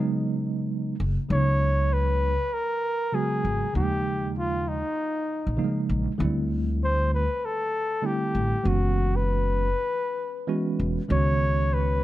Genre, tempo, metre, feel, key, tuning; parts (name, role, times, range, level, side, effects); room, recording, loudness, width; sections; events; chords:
hip hop; 98 BPM; 4/4; swing 60% on 16ths; C# dorian; A4 = 439 Hz
tine electric piano; accompaniment; 0.0-12.0 s; C#3 to F#4; -28 LUFS; right 2 dB; medium stereo tremolo
upright bass; bass; 1.0-12.0 s; E1 to D#2; -25 LUFS; equal
breathy flugelhorn; melody; 1.3-12.0 s; D#4 to C#5; -27 LUFS; left 1 dB
light reverb, studio ambience; dark, warm production; -23 LUFS; side -15 dB against mid
0.0-1.3 A section; 1.3-12.0 B section
0.0 F#sus4; 1.3 C#9sus4; 3.8 D#9sus4; 6.2 D9sus4; 8.6 F#9sus4; 11.1 C#9sus4